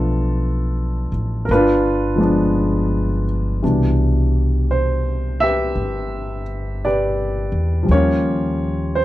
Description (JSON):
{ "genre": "jazz ballad", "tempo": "56 BPM", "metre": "4/4", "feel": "swing 66% on 8ths", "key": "C major from 3.6 s", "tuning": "A4 = 440 Hz", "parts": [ { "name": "warm grand piano", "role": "accompaniment", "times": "0.0-9.0 s", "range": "B2 to E5", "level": "-19 LUFS", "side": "equal", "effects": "none" }, { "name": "upright bass", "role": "bass", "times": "0.0-9.0 s", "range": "G1 to E2", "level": "-20 LUFS", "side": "equal", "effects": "none" } ], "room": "little or no reverb", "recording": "dry, close 1970s-style studio recording", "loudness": "-16 LUFS", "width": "side -15 dB against mid", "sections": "0.0-3.6 A section; 3.6-9.0 B section", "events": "none", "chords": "0.0 Bm7b5; 1.5 G7b9; 3.6 Cmaj9; 7.9 Eb9" }